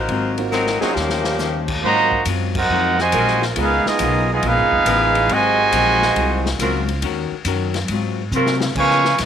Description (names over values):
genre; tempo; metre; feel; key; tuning
jazz, big band swing; 138 BPM; 4/4; swing 67% on 8ths; Ab major; A4 = 439 Hz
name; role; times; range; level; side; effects
clear saxophone section; melody; 0.0-1.7 s; F3 to C5; -22 LUFS; left 2 dB; tape echo
upright bass; bass; 0.0-9.3 s; F1 to Db3; -23 LUFS; equal; none
vintage hollow-body jazz guitar; accompaniment; 0.1-9.3 s; Ab2 to C5; -26 LUFS; left 12 dB; none
swinging big-band drum kit; drums; 0.1-9.3 s; crash cymbal, hi-hat, kick drum, ride cymbal, snare drum; -26 LUFS; left 4 dB; none
warm grand piano; accompaniment; 0.4-0.9 s; Bb3 to C5; -28 LUFS; right 12 dB; none
dark trumpet section; stabs; 0.8-0.9 s; none; barely audible; none; none
mellow trombone section; second line; 0.9-9.2 s; Bb2 to Gb4; -27 LUFS; right 13 dB; none
clear trumpet section; melody; 1.8-9.2 s; Cb4 to Db6; -16 LUFS; right 2 dB; none
warm saxophone section; sustained chords; 3.1-8.5 s; F3 to Bb4; -24 LUFS; right 2 dB; none
room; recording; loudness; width
light reverb, small room ambience; 1960s-style stereo with parts hard left and right; -16 LUFS; side -8 dB against mid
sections
0.0-1.8 A section; 1.8-9.3 B section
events
drum fill 0.5-1.4, 8.3-8.8; band accent 2.5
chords
0.1 Ab13; 1.0 Eb13; 1.8 Ab13; 3.6 Db13; 5.3 Ab13; 7.0 Ebm7; 7.9 Ab13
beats
| 0.09 0.53 0.96 1.40 | 1.83 2.26 2.70 3.13 | 3.56 4.00 4.43 4.87 | 5.30 5.73 6.17 6.60 | 7.03 7.47 7.90 8.34 | 8.77 9.21